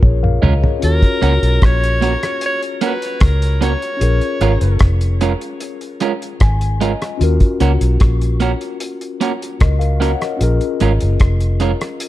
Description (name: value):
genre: lovers rock reggae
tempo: 75 BPM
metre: 4/4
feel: straight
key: Eb minor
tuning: A4 = 440 Hz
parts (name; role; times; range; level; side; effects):
- mellow tine electric piano; accompaniment; 0.0-12.1 s; Db4 to Ab5; -23 LUFS; left 5 dB; slow stereo tremolo
- vintage muted fingered electric bass; bass; 0.0-11.7 s; F1 to Eb2; -15 LUFS; equal; none
- cloth-damped thuddy drum kit; drums; 0.0-12.1 s; hi-hat, kick drum, rim click, toms; -15 LUFS; equal; none
- electric guitar through a small old amp; stabs; 0.4-11.7 s; Ab3 to Bb4; -22 LUFS; right 6 dB; none
- bright alto saxophone; melody; 0.8-4.8 s; Bb4 to Db5; -22 LUFS; equal; tape echo
room: small room ambience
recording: dark, warm production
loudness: -13 LUFS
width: side -15 dB against mid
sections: 0.0-12.1 A section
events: drum fill 0.0-0.8; tine electric piano fill 6.0-7.2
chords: 0.0 Bbm7; 0.8 Ebm7 (rootless); 4.0 Bbm7; 7.2 Ebm7; 10.4 Bbm7